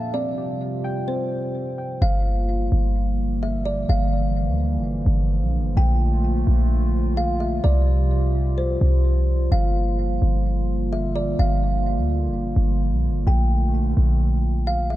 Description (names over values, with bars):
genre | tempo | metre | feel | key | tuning
hip hop | 128 BPM | 4/4 | half-time | G dorian | A4 = 438 Hz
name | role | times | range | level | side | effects
kalimba | melody | 0.0-15.0 s | C5 to G5 | -29 LUFS | equal | low-pass filter, tape echo
dark analog pad | sustained chords | 0.0-15.0 s | Bb2 to A4 | -26 LUFS | right 1 dB | wide subtle chorus
muted felt-like synth keys | arpeggios | 0.0-2.0 s | Bb3 to A5 | -31 LUFS | left 2 dB | chorus, low-pass filter, tape echo
warm 808-style bass | bass | 2.0-15.0 s | G1 to D2 | -20 LUFS | equal | none
room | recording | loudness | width
digital ambience | dark, warm production | -19 LUFS | side -15 dB against mid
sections
0.0-2.0 A section; 2.0-15.0 B section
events
filter sweep 0.0-2.0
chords
0.1 Csus4; 2.0 Gm7; 5.8 Bbmaj7; 7.6 Csus4; 9.5 Gm7; 13.3 Bbmaj7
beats
| 0.14 0.61 1.08 1.55 | 2.02 2.49 2.95 3.42 | 3.89 4.36 4.83 5.30 | 5.77 6.24 6.70 7.17 | 7.64 8.11 8.58 9.05 | 9.52 9.99 10.45 10.92 | 11.39 11.86 12.33 12.80 | 13.27 13.74 14.20 14.67